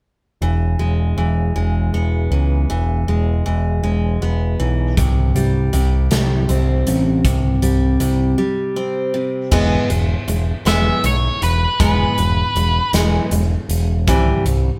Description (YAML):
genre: quiet-loud alternative rock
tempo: 53 BPM (dotted quarters)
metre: 6/8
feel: straight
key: unclear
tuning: A4 = 439 Hz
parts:
  - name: picked steel-string acoustic guitar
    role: arpeggios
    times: 0.4-14.8 s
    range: C3 to C4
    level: -23 LUFS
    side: equal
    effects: none
  - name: growling picked electric bass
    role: bass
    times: 0.4-14.7 s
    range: E1 to C#2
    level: -20 LUFS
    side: equal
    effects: overdrive
  - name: big rock drum kit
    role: drums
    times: 5.0-14.6 s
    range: crash cymbal, hi-hat, kick drum, snare drum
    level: -24 LUFS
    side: equal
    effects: none
  - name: octave-fuzz lead guitar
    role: melody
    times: 10.7-12.9 s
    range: B4 to E5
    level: -22 LUFS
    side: equal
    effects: distortion
room: moderate stone room reverb, RT60 1.1 s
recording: band playing live in one room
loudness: -18 LUFS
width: mono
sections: 0.4-9.5 A section; 9.5-14.8 B section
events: break 8.4-9.5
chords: 0.4 E; 5.0 C5; 9.5 E; 14.1 C